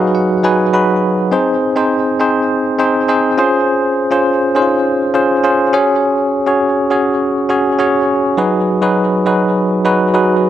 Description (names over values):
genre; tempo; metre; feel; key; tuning
pop; 102 BPM; 4/4; straight; unclear; A4 = 441 Hz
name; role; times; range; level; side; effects
bell-like tine electric piano; solo; 0.0-10.5 s; F#3 to B5; -12 LUFS; equal; fast stereo tremolo, digital delay
room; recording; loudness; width
light reverb; none; -12 LUFS; side -11 dB against mid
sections
0.0-10.5 A section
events
tine electric piano fill 0.0-1.3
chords
0.0 B6/F#; 1.3 Ab; 3.4 Dbmaj7; 5.7 Gbsus2; 8.4 B6/F#